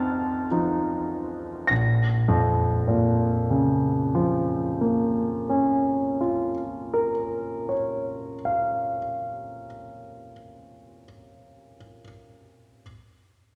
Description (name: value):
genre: classical, romantic nocturne for solo piano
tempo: 27 BPM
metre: 4/4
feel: rubato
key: Bb minor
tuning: A4 = 436 Hz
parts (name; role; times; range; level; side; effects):
- warm concert grand piano; solo; 0.0-12.8 s; Bb1 to Bb6; -25 LUFS; equal; none
room: wet scoring stage reverb, RT60 2.2 s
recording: none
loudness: -25 LUFS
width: mono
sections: 0.0-1.7 A section; 1.7-10.5 B section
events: slowing down 0.0-1.7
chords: 0.0 F7; 1.7 Bbm